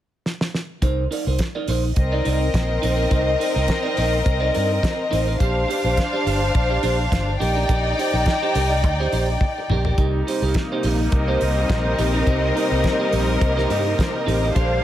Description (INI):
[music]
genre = disco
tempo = 105 BPM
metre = 4/4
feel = straight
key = C minor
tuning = A4 = 441 Hz
[part]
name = damped 70s drum kit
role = drums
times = 0.3-14.7 s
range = hi-hat, kick drum, snare drum, toms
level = -24 LUFS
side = equal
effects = none
[part]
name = electric guitar at the edge of break-up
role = accompaniment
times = 0.8-14.8 s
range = D4 to D5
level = -26 LUFS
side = right 4 dB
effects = none
[part]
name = vintage muted fingered electric bass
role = bass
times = 0.8-14.8 s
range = G1 to G2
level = -22 LUFS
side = equal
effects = none
[part]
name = warm studio violin section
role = second line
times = 2.0-14.8 s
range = C4 to G5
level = -22 LUFS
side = left 2 dB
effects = none
[part]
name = clear symphonic string section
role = sustained chords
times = 10.0-14.8 s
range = C3 to Eb4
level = -26 LUFS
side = equal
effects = none
[sound]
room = light reverb, small room ambience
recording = none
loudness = -18 LUFS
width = side -12 dB against mid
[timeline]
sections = 0.8-14.8 A section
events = drum fill 0.2-0.8, 9.4-10.0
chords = 0.0 N.C.; 0.8 Cm7; 5.4 Bb69; 7.4 Ebmaj7/Bb; 10.0 Cm7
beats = 0.25 | 0.82 1.39 1.97 2.54 | 3.11 3.68 4.26 4.83 | 5.40 5.97 6.55 7.12 | 7.69 8.26 8.84 9.41 | 9.98 10.55 11.12 11.70 | 12.27 12.84 13.42 13.99 | 14.56